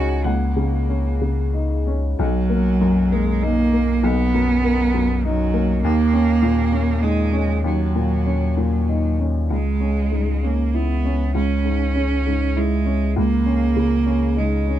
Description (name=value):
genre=neoclassical piano and strings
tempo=92-102 BPM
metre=3/4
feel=rubato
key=B major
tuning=A4 = 440 Hz
part: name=rich cello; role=second line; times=0.0-14.8 s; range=F#3 to F#4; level=-21 LUFS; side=right 4 dB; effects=none
part: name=warm upright piano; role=accompaniment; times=0.0-14.8 s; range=B1 to A#5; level=-23 LUFS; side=left 3 dB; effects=none
part: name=punchy sub bass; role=bass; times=0.0-14.8 s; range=B1 to D#2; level=-21 LUFS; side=left 1 dB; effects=none
room=little or no reverb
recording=close, detailed microphones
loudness=-17 LUFS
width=side -12 dB against mid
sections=0.0-2.2 A section; 2.2-14.8 B section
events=none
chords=0.0 F#6/C#; 2.2 Bmaj7; 5.8 D#m7; 9.5 C#m; 13.2 F#6/C# (rootless)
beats=| 0.26 0.90 1.55 | 2.19 2.82 3.44 | 4.05 4.64 5.24 | 5.83 6.42 7.02 | 7.64 8.26 8.88 | 9.51 10.12 10.74 | 11.35 11.96 12.56 | 13.16 13.76 14.37